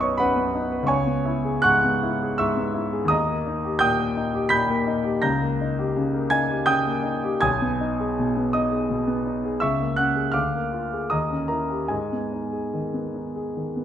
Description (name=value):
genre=classical, romantic character piece for solo piano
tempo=72-87 BPM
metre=3/4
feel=rubato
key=G# minor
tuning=A4 = 440 Hz
part: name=warm grand piano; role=solo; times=0.0-13.8 s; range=B1 to B6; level=-21 LUFS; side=equal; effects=none
room=wet recital hall reverb, RT60 1.5 s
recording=nothing above 10.3 kHz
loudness=-21 LUFS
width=side -10 dB against mid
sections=0.0-13.8 A section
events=none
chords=0.0 B; 0.9 C#m7; 3.1 D#; 5.2 D#7/C#; 7.4 G#m/B; 9.6 A#m7b5/C#; 10.3 A#7/D; 11.1 D#7b9; 11.9 G#m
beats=0.19 | 0.89 1.65 2.39 | 3.11 3.82 4.52 | 5.24 5.96 6.68 | 7.42 8.18 8.89 | 9.61 10.35 11.12 | 11.91 12.73 13.55